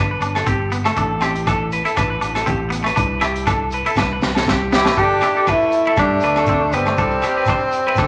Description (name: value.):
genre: highlife guitar band.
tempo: 120 BPM.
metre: 4/4.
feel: swing 54% on 16ths.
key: unclear.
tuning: A4 = 440 Hz.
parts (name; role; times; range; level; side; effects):
twangy electric guitar; accompaniment; 0.0-8.1 s; A3 to E4; -26 LUFS; equal; spring reverb.
semi-hollow electric guitar; arpeggios; 0.0-8.1 s; G4 to C5; -25 LUFS; equal; spring reverb.
fingered electric bass; bass; 0.0-8.1 s; G1 to G2; -27 LUFS; equal; none.
crunchy breakbeat drum kit; drums; 0.2-8.1 s; hi-hat, kick drum, rim click, snare drum; -26 LUFS; equal; none.
shekere; percussion; 0.2-8.1 s; none; -30 LUFS; equal; none.
agogo bells; percussion; 0.4-8.1 s; none; -32 LUFS; equal; none.
mellow tenor saxophone; melody; 4.7-8.1 s; C4 to G4; -20 LUFS; equal; none.
trombone with straight mute; second line; 4.8-8.0 s; G3 to E4; -26 LUFS; equal; none.
room: moderate large studio reverb, RT60 0.9 s.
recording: lossy compression artefacts.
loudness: -18 LUFS.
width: mono.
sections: 0.0-5.0 A section; 5.0-8.1 B section.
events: drum fill 4.0-5.0.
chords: 0.0 Cmaj7(no3)/G; 1.0 Am7; 3.0 Cmaj7(no3); 5.0 Gsus2; 7.0 C5.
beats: 0.46 | 0.96 1.47 1.97 2.47 | 2.97 3.47 3.97 4.47 | 4.97 5.47 5.97 6.47 | 6.97 7.48 7.98.